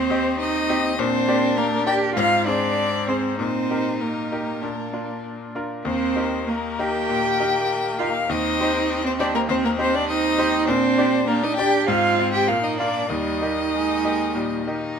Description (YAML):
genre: quick classical-period movement for piano quartet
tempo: 99 BPM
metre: 4/4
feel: rubato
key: Eb major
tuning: A4 = 440 Hz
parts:
  - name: warm violin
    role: melody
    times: 0.0-15.0 s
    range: Bb4 to G5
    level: -25 LUFS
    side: left 6 dB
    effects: none
  - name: rich cello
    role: second line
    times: 0.0-15.0 s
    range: Bb3 to G4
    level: -24 LUFS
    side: right 8 dB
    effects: none
  - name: rich violin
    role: second line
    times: 0.0-15.0 s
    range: G3 to Eb4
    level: -28 LUFS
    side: left 3 dB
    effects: none
  - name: bright grand piano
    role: accompaniment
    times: 0.0-15.0 s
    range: Eb2 to F5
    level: -25 LUFS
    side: left 3 dB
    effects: none
room: light reverb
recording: close, detailed microphones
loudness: -19 LUFS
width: side -7 dB against mid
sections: 0.0-15.0 A section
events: none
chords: 0.0 Cm/Eb; 1.0 Gm/Bb; 2.2 Fm6/Ab; 3.4 Eb/Bb; 4.6 Bb; 5.9 Eb; 8.3 Cm/Eb; 10.7 Gm/Bb; 11.9 Fm/Ab; 12.5 Bb; 13.1 Eb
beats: 0.40 | 0.99 1.57 2.17 2.77 | 3.39 4.01 4.62 5.24 | 5.86 6.48 7.10 7.69 | 8.30 8.90 9.50 10.09 | 10.68 11.28 11.88 12.48 | 13.10 13.73 14.36 14.98